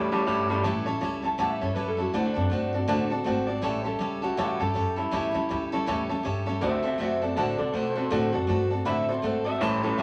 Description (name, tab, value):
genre	rockabilly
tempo	160 BPM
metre	4/4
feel	swing 60% on 8ths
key	A mixolydian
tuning	A4 = 440 Hz
part	bright upright piano	accompaniment	0.0-10.0 s	C#5 to B5	-36 LUFS	equal	none
part	picked steel-string acoustic guitar	accompaniment	0.0-10.0 s	A2 to A4	-31 LUFS	equal	none
part	electric guitar through a small old amp	riff	0.0-0.6, 9.6-10.0 s	A2 to G3	-28 LUFS	equal	none
part	upright bass	bass	0.0-10.0 s	G#1 to C3	-36 LUFS	equal	none
part	electric guitar through a small old amp	melody	1.3-10.0 s	D4 to A5	-32 LUFS	equal	spring reverb
room	wet club reverb, RT60 0.6 s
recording	vinyl crackle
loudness	-27 LUFS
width	mono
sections	0.6-10.0 A section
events	upright piano fill 0.0-0.6; clean electric guitar solo 0.6-10.0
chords	0.0 A7; 2.1 D7; 3.6 A7; 6.6 D7